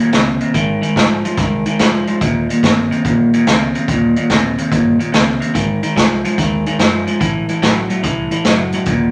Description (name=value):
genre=electric blues shuffle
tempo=144 BPM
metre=4/4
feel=swing 67% on 8ths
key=unclear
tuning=A4 = 441 Hz
part: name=electric guitar through a small old amp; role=riff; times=0.0-9.1 s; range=Eb2 to F#3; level=-18 LUFS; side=equal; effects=none
part: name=vintage muted fingered electric bass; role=bass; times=0.1-9.1 s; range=Eb1 to Gb2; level=-29 LUFS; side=equal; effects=none
part: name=swinging big-band drum kit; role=drums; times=0.1-9.0 s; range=hi-hat, kick drum, snare drum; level=-19 LUFS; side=equal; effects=none
room=wet large studio reverb, RT60 1.0 s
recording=none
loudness=-15 LUFS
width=mono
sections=0.0-9.1 A section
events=none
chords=0.0 Eb7(no3); 0.5 Ab; 2.2 Eb7; 5.5 Ab7; 7.2 Am6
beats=0.13 | 0.55 0.96 1.38 1.80 | 2.21 2.63 3.04 3.46 | 3.88 4.29 4.71 5.13 | 5.54 5.96 6.38 6.79 | 7.21 7.63 8.04 8.46 | 8.87